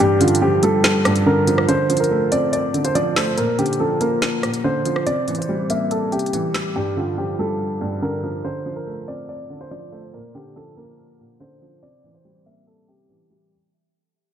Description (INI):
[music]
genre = hip hop, drill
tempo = 142 BPM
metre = 4/4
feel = half-time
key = unclear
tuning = A4 = 440 Hz
[part]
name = dark concert grand piano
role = melody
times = 0.0-13.5 s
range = F4 to E5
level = -22 LUFS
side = left 1 dB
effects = low-pass filter, diffuse ambient delay
[part]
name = felt-muted upright piano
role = accompaniment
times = 0.0-13.5 s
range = G2 to C4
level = -21 LUFS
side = right 1 dB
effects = low-pass filter
[part]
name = drill drum kit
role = drums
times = 0.0-6.6 s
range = finger snaps, hi-hat, rim click, snare drum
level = -23 LUFS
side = equal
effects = vintage 12-bit sampler grit
[sound]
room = wet lush hall reverb, RT60 1.7 s, studio reverb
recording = dreamy mix soaked in reverb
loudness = -17 LUFS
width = side -9 dB against mid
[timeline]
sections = 0.0-13.5 A section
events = break 0.0-6.8; fade-out 0.0-13.5; filter sweep 0.0-13.5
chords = 0.0 Gm7; 1.7 Dm7; 3.4 Bbadd9; 5.1 C7; 6.8 Gm7; 8.4 Dm7; 10.1 Bbadd9; 11.8 C7